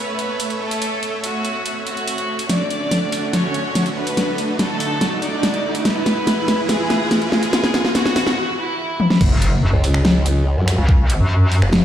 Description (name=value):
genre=heavy wobble dubstep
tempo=143 BPM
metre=4/4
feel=half-time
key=F# minor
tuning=A4 = 439 Hz
part: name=clear chamber violin section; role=melody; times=0.0-9.1 s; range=G#3 to D5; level=-24 LUFS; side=equal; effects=dub echo
part: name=supersaw pad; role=sustained chords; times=0.0-8.3 s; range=D3 to E5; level=-26 LUFS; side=right 1 dB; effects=vintage 12-bit sampler grit, sidechain pumping
part: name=riser and impact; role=sound effects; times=0.1-10.9 s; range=none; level=-26 LUFS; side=right 1 dB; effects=none
part: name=dubstep drum kit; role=drums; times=0.2-11.8 s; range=crash cymbal, finger snaps, hi-hat, snare drum, toms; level=-20 LUFS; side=equal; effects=none
part: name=metallic wobble bass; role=bass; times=9.2-11.6 s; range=F#1 to F#2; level=-15 LUFS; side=equal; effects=chorus, overdrive
part: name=electronic kick drum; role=drums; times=9.2-11.0 s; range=none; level=-14 LUFS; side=equal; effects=none
part: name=formant-sweep wobble bass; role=bass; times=9.7-11.8 s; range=F#1 to F#2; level=-16 LUFS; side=equal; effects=chorus, overdrive
room=moderate lush hall reverb, RT60 1.9 s, digital ambience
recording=played on a big sound system in a bare room, stone room reverb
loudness=-16 LUFS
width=side -10 dB against mid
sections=0.0-9.2 A section; 9.2-11.8 B section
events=build-up 0.0-9.2; riser 0.1-8.4; drum fill 2.5-8.4, 9.0; break 8.4-9.2; drop 9.2-11.8; impact 9.2-10.9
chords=0.0 A; 2.5 D; 5.9 E; 9.2 F#5